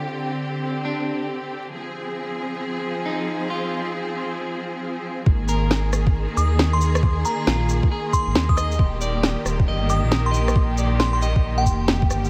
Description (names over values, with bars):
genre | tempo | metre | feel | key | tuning
future garage | 136 BPM | 4/4 | swing 64% on 16ths | unclear | A4 = 439 Hz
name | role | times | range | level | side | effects
rich studio string section | sustained chords | 0.0-12.3 s | D3 to Ab4 | -29 LUFS | equal | vintage 12-bit sampler grit, sidechain pumping
electric guitar at the edge of break-up | accompaniment | 0.8-11.6 s | D4 to Eb5 | -34 LUFS | equal | sidechain pumping, dub echo
dark detuned saw bass | bass | 5.3-12.3 s | Eb1 to Eb2 | -24 LUFS | equal | sidechain pumping
electronic kick drum | drums | 5.3-12.1 s | none | -21 LUFS | equal | small room ambience
electronic shaker, snare drum and rim click | drums | 5.5-12.3 s | none | -27 LUFS | equal | low-pass filter on perc, small room ambience, low-pass filter on snare
glassy synth bell | melody | 6.4-12.2 s | G5 to Eb6 | -30 LUFS | equal | chorus, tremolo, dub echo
room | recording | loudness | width
light reverb, digital ambience | vinyl crackle | -22 LUFS | mono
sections
0.0-5.3 A section; 5.3-12.3 B section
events
break 4.4-5.3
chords
0.0 Bb6 (rootless); 1.7 Fm; 5.3 Absus2; 8.8 Eb